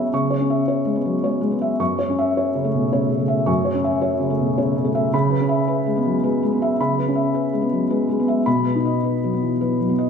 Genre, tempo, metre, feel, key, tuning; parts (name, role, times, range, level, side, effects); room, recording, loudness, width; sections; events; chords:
neoclassical minimalist piano; 107 BPM; 3/4; rubato; C# minor; A4 = 440 Hz
felt-muted upright piano; solo; 0.0-10.1 s; F#2 to C#6; -18 LUFS; equal
wet concert hall reverb, RT60 1.9 s; recorded in a church or concert hall; -18 LUFS; side -6 dB against mid
0.0-10.1 A section
0.0 C#m7; 1.8 F#m7; 5.1 C#m7; 8.5 B